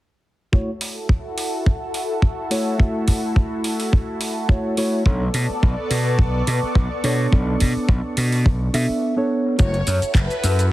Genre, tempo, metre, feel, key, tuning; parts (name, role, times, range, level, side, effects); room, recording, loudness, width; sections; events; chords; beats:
nu-disco, nu disco; 106 BPM; 4/4; swing 54% on 16ths; F# minor; A4 = 441 Hz
mellow reed electric piano; accompaniment; 0.5-9.8 s; A3 to E5; -23 LUFS; equal; low-pass filter, analog delay
lush unison pad; sustained chords; 0.9-10.7 s; B3 to C#6; -28 LUFS; equal; chorus, phaser, sidechain pumping
kick drum; drums; 0.5-10.3 s; -16 LUFS; equal; studio ambience
house drum kit; drums; 0.8-10.7 s; handclaps, hi-hat, shaker; -29 LUFS; right 1 dB; studio ambience
gritty slap bass; bass; 5.1-10.7 s; F#1 to B2; -20 LUFS; equal; overdrive
dark studio violin section; melody; 9.6-10.7 s; B4 to C#5; -25 LUFS; left 2 dB; tape echo
light reverb, studio ambience; heavily compressed radio sound, multiband compression; -18 LUFS; side -16 dB against mid
0.5-9.6 A section; 9.6-10.7 B section
filter sweep on reed electric piano 0.5-9.6; filter sweep on analog synth pad 0.5-9.6
0.5 F#m7; 5.1 Bm9; 9.6 F#m7
| 0.53 1.10 1.66 2.23 | 2.79 3.36 3.93 4.49 | 5.06 5.62 6.19 6.76 | 7.32 7.89 8.46 9.02 | 9.59 10.15 10.72